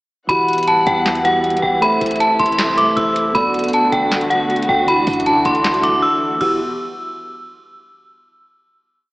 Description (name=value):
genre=hip hop, trap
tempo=157 BPM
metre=4/4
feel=half-time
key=E minor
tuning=A4 = 440 Hz
part: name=metallic FM bell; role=melody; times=0.3-6.6 s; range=F#5 to E6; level=-16 LUFS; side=equal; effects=chorus, low-pass filter, diffuse ambient delay
part: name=bell-like tine electric piano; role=accompaniment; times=0.3-6.6 s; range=D3 to E5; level=-22 LUFS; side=right 1 dB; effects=wide subtle chorus, low-pass filter
part: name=dark chamber string section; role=sustained chords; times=0.3-6.6 s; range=C3 to F#5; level=-22 LUFS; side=equal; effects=none
part: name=warm 808-style bass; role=bass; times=0.3-6.8 s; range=E1 to F#2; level=-31 LUFS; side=equal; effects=none
part: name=booming analog drum machine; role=drums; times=0.3-6.6 s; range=crash cymbal, handclaps, hi-hat, kick drum, snare drum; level=-25 LUFS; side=equal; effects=none
room=wet plate reverb, RT60 2.0 s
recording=dreamy mix soaked in reverb, AM radio sound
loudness=-14 LUFS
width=side -20 dB against mid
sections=0.3-6.4 hook; 6.4-7.9 final chord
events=drums muted 6.0-6.4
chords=0.3 Emadd9; 1.8 Am; 3.4 Bm7; 4.9 Dadd9; 6.4 Emadd9